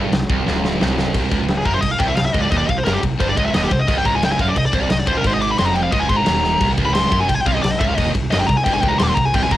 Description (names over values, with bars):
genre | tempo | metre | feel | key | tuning
heavy metal | 176 BPM | 4/4 | straight | unclear | A4 = 440 Hz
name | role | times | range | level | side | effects
distorted electric guitar | riff | 0.0-9.6 s | C2 to Ab2 | -22 LUFS | right 6 dB | overdrive, cassette tape
fuzz guitar | riff | 0.0-1.1, 6.6-9.6 s | C2 to G2 | -27 LUFS | left 1 dB | none
heavy high-gain guitar | riff | 0.0-9.6 s | C2 to Ab2 | -26 LUFS | left 8 dB | distortion, cassette tape
upright bass | bass | 0.0-9.6 s | C1 to Ab1 | -24 LUFS | equal | none
big rock drum kit | drums | 0.1-9.6 s | crash cymbal, kick drum, snare drum | -21 LUFS | left 1 dB | none
high-gain lead guitar | melody | 1.6-9.6 s | G4 to D6 | -20 LUFS | left 2 dB | distortion, cassette tape
room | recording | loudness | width
little or no reverb | home recording on cassette | -15 LUFS | side -14 dB against mid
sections
0.0-1.1 A section; 1.1-9.6 B section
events
drum fill 0.5-1.1, 6.4; lead electric guitar solo 1.1-9.6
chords
0.0 C5; 1.1 Cm